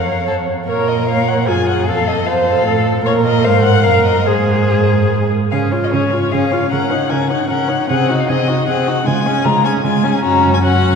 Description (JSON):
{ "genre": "quick classical-period movement for string quartet", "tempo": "152 BPM", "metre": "3/4", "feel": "rubato", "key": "Db major from 3.0 s", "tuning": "A4 = 440 Hz", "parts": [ { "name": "rich violin", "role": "melody", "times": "0.0-11.0 s", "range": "C5 to Bb5", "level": "-19 LUFS", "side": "left 6 dB", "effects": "none" }, { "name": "warm violin", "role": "second line", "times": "0.0-11.0 s", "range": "F4 to Db5", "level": "-22 LUFS", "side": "left 3 dB", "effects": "none" }, { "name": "warm viola", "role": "accompaniment", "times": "0.0-11.0 s", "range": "Ab3 to Db5", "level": "-18 LUFS", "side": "right 2 dB", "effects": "none" }, { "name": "warm cello", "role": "bass", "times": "0.0-11.0 s", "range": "F2 to Db3", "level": "-17 LUFS", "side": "right 2 dB", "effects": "none" } ], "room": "wet cathedral reverb, RT60 5.4 s", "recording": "recorded in a church or concert hall", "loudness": "-12 LUFS", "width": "side -6 dB against mid", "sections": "0.0-5.5 A section; 5.5-11.0 B section", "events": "none", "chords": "0.3 N.C.; 0.7 Bbm; 1.9 F; 3.0 Ab13; 3.8 Ebm/Gb; 4.3 Ab; 5.5 Db; 6.7 Ebm7/Db; 7.9 Ab7/C; 9.1 Db; 10.2 Gb" }